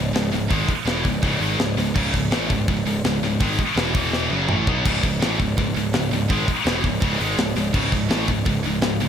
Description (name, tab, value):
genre	heavy metal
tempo	166 BPM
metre	4/4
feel	straight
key	C# minor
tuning	A4 = 441 Hz
part	heavy high-gain guitar	riff	0.0-9.1 s	C#2 to B3	-25 LUFS	left 9 dB	distortion
part	scooped high-gain guitar	riff	0.0-9.1 s	C#2 to B3	-25 LUFS	right 8 dB	distortion
part	fuzz picked electric bass	bass	0.0-9.1 s	C#1 to B1	-26 LUFS	equal	overdrive
part	tight metal drum kit	drums	0.2-9.1 s	crash cymbal, hi-hat, kick drum, snare drum, toms	-24 LUFS	equal	none
room	moderate scoring stage reverb, RT60 1.9 s, small room reverb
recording	big arena sound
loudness	-19 LUFS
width	side -8 dB against mid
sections	0.0-9.1 A section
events	drum fill 4.1-4.9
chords	0.0 C#m; 4.0 E5; 4.3 C#m